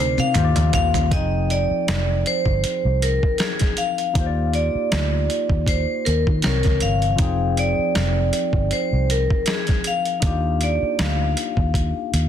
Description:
R&B, neo-soul; 79 BPM; 4/4; swing 53% on 16ths; F dorian; A4 = 440 Hz
vibraphone with hard mallets; melody; 0.0-12.3 s; Ab4 to F5; -23 LUFS; equal
barky tine electric piano; accompaniment; 0.0-12.3 s; C3 to G5; -27 LUFS; left 6 dB; overdrive, phaser
vintage muted fingered electric bass; bass; 0.0-12.3 s; F1 to Eb3; -21 LUFS; equal
boom bap sampler-style drum kit; drums; 0.2-12.3 s; hi-hat, kick drum, snare drum, toms; -23 LUFS; equal
maracas and finger snaps; percussion; 0.2-1.1 s; -34 LUFS; right 11 dB
light reverb; dense, heavily limited modern master; -18 LUFS; side -9 dB against mid
0.0-1.1 A section; 1.1-12.3 B section
drum fill 0.0-1.1
0.4 Ebmaj9; 1.1 Fm9; 4.2 Ebmaj9; 6.4 C7b9; 7.2 Fm9; 10.2 Ebmaj9

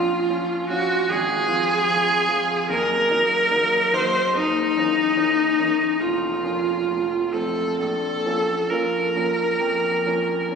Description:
classical, romantic duo for viola and grand piano; 64-76 BPM; 4/4; rubato; Bb minor; A4 = 440 Hz
bright viola; melody; 0.0-10.6 s; Eb4 to C5; -20 LUFS; equal
clear baby grand piano; accompaniment; 0.0-10.6 s; F1 to F4; -27 LUFS; right 2 dB
wet church reverb, RT60 2.8 s; recorded on a phone in the room, studio reverb, compression; -19 LUFS; side -6 dB against mid
0.0-10.6 A section
0.0 Bbm; 1.1 Fm/Ab; 2.7 Ebm/Gb; 4.4 Gb7; 6.0 Bbm/F; 6.9 F; 7.8 Bbm

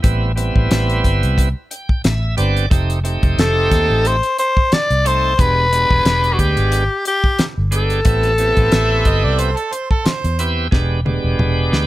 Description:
straight-eighth soul blues; 90 BPM; 4/4; swing 55% on 16ths; A minor; A4 = 441 Hz
bright tonewheel organ; accompaniment; 0.0-11.9 s; G3 to G5; -22 LUFS; right 3 dB; overdrive, slow rotary speaker
vintage muted fingered electric bass; bass; 0.0-11.9 s; E1 to E2; -18 LUFS; equal
damped 70s drum kit; drums; 0.0-11.9 s; hi-hat, kick drum, snare drum, toms; -18 LUFS; equal
raspy tenor saxophone; melody; 3.4-9.7 s; F#4 to D5; -17 LUFS; left 2 dB
bright harmonica; second line; 8.7-10.4 s; A4 to E5; -22 LUFS; right 4 dB; overdrive
little or no reverb; -14 LUFS; side -16 dB against mid
0.0-11.9 A section
tonewheel organ fill 1.4-2.7; drum fill 10.7-11.9
0.0 Am9; 2.7 F7; 5.4 E7#9; 8.1 Am9; 10.7 E7#9

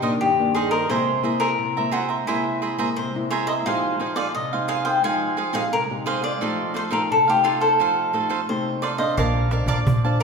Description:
samba and choro; 87 BPM; 4/4; straight; A4 = 440 Hz
cavaquinho; melody; 0.0-10.2 s; E4 to Ab5; -22 LUFS; left 1 dB
cavaquinho; accompaniment; 0.0-10.2 s; Eb4 to Bb5; -26 LUFS; right 4 dB
nylon-string guitar; accompaniment; 0.0-10.2 s; G2 to C5; -27 LUFS; left 2 dB
upright bass; bass; 9.2-10.2 s; Bb1; -21 LUFS; equal
cajon; drums; 9.2-10.2 s; -25 LUFS; right 1 dB
wet scoring stage reverb, RT60 1.9 s; recorded in a church or concert hall; -20 LUFS; side -5 dB against mid
0.0-10.2 A section
0.0 Cm9; 0.9 Caug7; 3.7 Fm9; 6.4 F9; 9.2 Bbmaj9

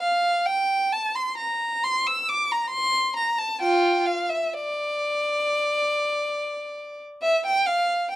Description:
classical, baroque-style suite movement for unaccompanied violin; 66 BPM; 4/4; rubato; A4 = 440 Hz
rich violin; solo; 0.0-8.2 s; F4 to E6; -22 LUFS; equal
light reverb; dark, warm production; -21 LUFS; side -14 dB against mid
0.0-8.2 A section

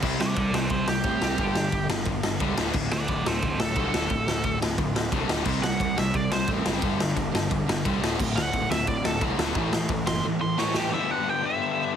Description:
punk rock; 176 BPM; 4/4; straight; D mixolydian; A4 = 440 Hz
distorted electric guitar; riff; 0.0-12.0 s; D2 to G4; -30 LUFS; left 11 dB; distortion
sludgy distorted guitar; riff; 0.0-10.9 s; D2 to C4; -31 LUFS; right 10 dB; overdrive
fuzz picked electric bass; bass; 0.0-10.2 s; D1 to C3; -31 LUFS; equal; overdrive
raw garage drum kit; drums; 0.0-10.8 s; crash cymbal, kick drum, ride cymbal, snare drum; -28 LUFS; left 1 dB
nasal lead guitar with a parked wah; melody; 0.2-11.9 s; F#4 to C6; -28 LUFS; right 3 dB; overdrive
light reverb; heavily compressed radio sound, multiband compression; -23 LUFS; side -8 dB against mid
0.0-10.9 A section; 10.9-12.0 B section
lead electric guitar solo 0.0-10.9; drum fill 10.6-10.9
0.0 C5; 1.4 G5; 2.6 D5; 5.5 C5; 6.8 G5; 8.0 D; 9.6 A5; 10.9 G

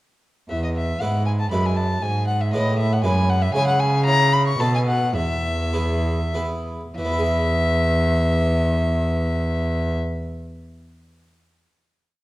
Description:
classical, baroque-style sonata movement with continuo; 93-119 BPM; 3/4; straight; E major; A4 = 440 Hz
warm violin; melody; 0.5-9.9 s; D#5 to C#6; -23 LUFS; left 2 dB
harpsichord; accompaniment; 0.5-10.2 s; E2 to E5; -28 LUFS; right 2 dB
rich cello; bass; 0.5-9.9 s; E2 to C#3; -21 LUFS; right 1 dB
wet recital hall reverb, RT60 1.5 s; dark, warm production; -19 LUFS; side -17 dB against mid
0.5-7.0 A section; 7.0-10.8 final chord
slowing down 2.8-7.0
0.5 E; 2.0 E/G#; 3.5 C#m; 4.1 C#m6; 4.6 B7; 5.1 E

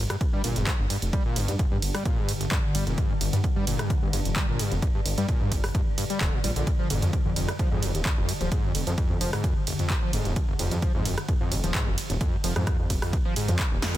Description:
driving peak-time techno; 130 BPM; 4/4; straight; G phrygian; A4 = 441 Hz
screaming distorted acid line; riff; 0.0-14.0 s; F1 to G3; -30 LUFS; equal; distortion, analog chorus, cassette tape, sidechain pumping, dub echo
detuned saw bass; bass; 0.0-14.0 s; D1 to G2; -28 LUFS; equal; sidechain pumping
swarming drone; drone; 0.9-14.0 s; G2 to D3; -35 LUFS; left 2 dB; built-in reverb, sidechain pumping
punchy analog drum machine; drums; 0.1-14.0 s; handclaps, hi-hat, ride cymbal, rim click, snare drum; -32 LUFS; right 1 dB
electronic kick drum; drums; 0.2-13.7 s; -26 LUFS; equal
little or no reverb; dense, heavily limited modern master; -23 LUFS; side -14 dB against mid
0.0-14.0 A section
0.0 Gm; 6.7 Fm

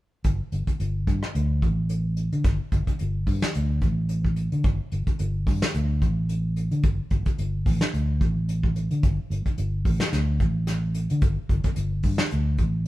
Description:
afrobeat; 109 BPM; 4/4; swing 55% on 16ths; A4 = 440 Hz
fingered electric bass; bass; 0.2-12.9 s; G1 to D3; -24 LUFS; equal
soft brush drum kit; drums; 0.2-12.7 s; hi-hat, kick drum, rim click, snare drum; -25 LUFS; equal
light reverb; band playing live in one room; -22 LUFS; side -16 dB against mid
0.2-12.9 A section

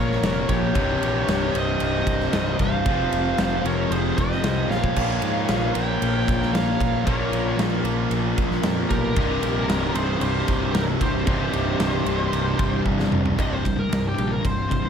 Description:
heavy metal; 114 BPM; 4/4; straight; C phrygian; A4 = 439 Hz
high-gain lead guitar; melody; 0.0-14.9 s; G4 to G5; -28 LUFS; equal; distortion
high-gain lead guitar; second line; 0.0-12.8 s; G4 to Db5; -32 LUFS; right 4 dB; distortion
crunchy overdriven guitar; riff; 0.0-13.4 s; C2 to Bb4; -30 LUFS; equal
high-gain distorted guitar; riff; 0.0-14.9 s; C2 to Bb3; -27 LUFS; left 10 dB; distortion
tight distorted guitar; riff; 0.0-14.9 s; C2 to Bb3; -29 LUFS; right 14 dB; distortion
fuzz picked electric bass; bass; 0.0-14.8 s; C1 to Ab2; -27 LUFS; equal; overdrive
big rock drum kit; drums; 0.1-14.8 s; crash cymbal, kick drum, ride cymbal, snare drum, toms; -26 LUFS; equal
studio reverb; -20 LUFS; side -7 dB against mid
0.0-13.4 A section; 13.4-14.9 B section
drum fill 4.7, 12.9-13.4; lead electric guitar solo 13.4-14.9
0.0 Bbm; 0.8 Cm; 2.9 Fm; 5.0 Bbm; 9.2 Cm; 13.4 C5

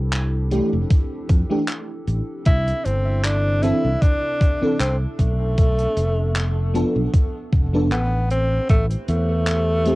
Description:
vaporwave; 77 BPM; 4/4; swing 54% on 16ths; A4 = 440 Hz
warbly tape-like pad; sustained chords; 0.0-10.0 s; C3 to C5; -34 LUFS; right 1 dB; chorus, built-in reverb, cassette tape
fingered electric bass; bass; 0.0-9.9 s; F1 to F2; -21 LUFS; equal
damped 70s drum kit; drums; 0.1-10.0 s; handclaps, hi-hat; -29 LUFS; equal; studio reverb, cassette tape
FM electric piano with soft pad layer; accompaniment; 0.5-10.0 s; E3 to A4; -22 LUFS; equal; tremolo, ensemble chorus, vintage 12-bit sampler grit, cassette tape, tape echo
electronic kick drum; drums; 0.9-8.9 s; -17 LUFS; equal; overdrive, studio reverb, cassette tape
breathy tenor saxophone; melody; 2.5-10.0 s; A3 to E4; -24 LUFS; equal; cassette tape, tape echo
light reverb; home recording on cassette; -18 LUFS; side -20 dB against mid
0.0-10.0 A section
0.0 Fmaj13; 2.5 C69; 5.2 Bm7b5; 8.3 Am7

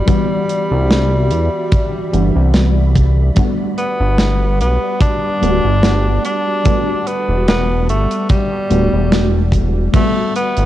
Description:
vaporwave; 73 BPM; 4/4; swing 54% on 16ths; G major; A4 = 440 Hz
bright tenor saxophone; melody; 0.0-10.7 s; G3 to D4; -20 LUFS; equal; tape echo
mellow FM electric piano; accompaniment; 0.0-10.7 s; E3 to F#4; -20 LUFS; left 1 dB; phaser, ensemble chorus, vintage 12-bit sampler grit
soft string machine; sustained chords; 0.0-9.9 s; G3 to B5; -28 LUFS; equal; ensemble chorus, vintage 12-bit sampler grit
chorused synth bass; bass; 0.0-10.7 s; D1 to E2; -14 LUFS; equal
kick drum; drums; 0.1-10.1 s; -16 LUFS; equal
tight metal drum kit; drums; 0.1-10.7 s; crash cymbal, hi-hat, snare drum; -20 LUFS; equal; gated reverb
light reverb, studio reverb; cassette tape; -12 LUFS; side -13 dB against mid
0.0-9.9 A section
0.1 Cmaj9#11; 3.4 Gmaj7; 6.2 Em11; 9.9 Gmaj7

